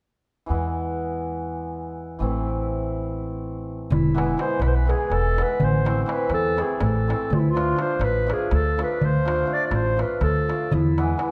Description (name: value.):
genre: balkan folk, Balkan wedding band.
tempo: 247 BPM (eighths).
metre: 7/8.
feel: straight.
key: E phrygian dominant.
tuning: A4 = 439 Hz.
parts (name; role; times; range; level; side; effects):
hammered dulcimer; accompaniment; 0.5-11.3 s; E3 to F4; -30 LUFS; equal; none.
upright bass; bass; 0.5-11.1 s; E1 to E2; -28 LUFS; equal; none.
dark clarinet; melody; 3.9-11.2 s; E4 to D5; -27 LUFS; equal; none.
darbuka; percussion; 3.9-11.3 s; none; -28 LUFS; equal; none.
room: wet recital hall reverb, RT60 1.5 s.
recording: none.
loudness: -23 LUFS.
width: mono.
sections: 0.5-3.9 A section; 3.9-11.3 B section.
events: none.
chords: 0.5 E; 2.2 Am; 3.9 E; 5.6 Am; 7.3 Dm; 10.7 E.